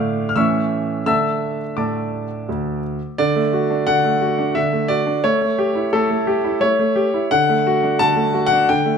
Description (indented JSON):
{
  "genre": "classical-period piano sonatina",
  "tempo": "87 BPM",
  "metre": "3/4",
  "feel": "straight",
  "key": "D minor, D major from 3.2 s",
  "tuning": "A4 = 442 Hz",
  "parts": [
    { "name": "clear grand piano", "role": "solo", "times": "0.0-9.0 s", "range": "D2 to F6", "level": "-16 LUFS", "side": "equal", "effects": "none" }
  ],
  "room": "moderate recital hall reverb, RT60 1.5 s",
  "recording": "close, detailed microphones",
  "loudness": "-16 LUFS",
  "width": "side -6 dB against mid",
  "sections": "0.0-3.2 A section; 3.2-9.0 A section",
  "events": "none",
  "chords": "0.4 A; 1.1 D5; 3.2 D; 5.2 A7; 7.3 D",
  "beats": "0.36 | 1.07 1.78 2.48 | 3.18 3.88 4.56 | 5.24 5.92 6.60 | 7.30 7.99 8.66"
}